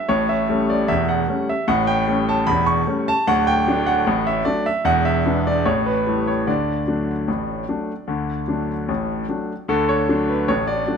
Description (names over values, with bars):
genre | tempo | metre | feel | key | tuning
ragtime piano | 75 BPM | 2/4 | straight | D major | A4 = 441 Hz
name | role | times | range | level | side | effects
clear concert grand piano | solo | 0.0-11.0 s | D1 to C#6 | -18 LUFS | equal | none
room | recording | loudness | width
moderate echo chamber reverb, RT60 2.1 s | none | -18 LUFS | side -6 dB against mid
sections
0.0-9.7 A section; 9.7-11.0 A section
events
none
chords
0.1 A7; 3.3 D; 4.9 E7; 5.7 A5; 6.5 D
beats
| 0.09 0.89 | 1.68 2.48 | 3.27 4.07 | 4.87 5.67 | 6.47 7.28 | 8.09 8.90 | 9.71 10.51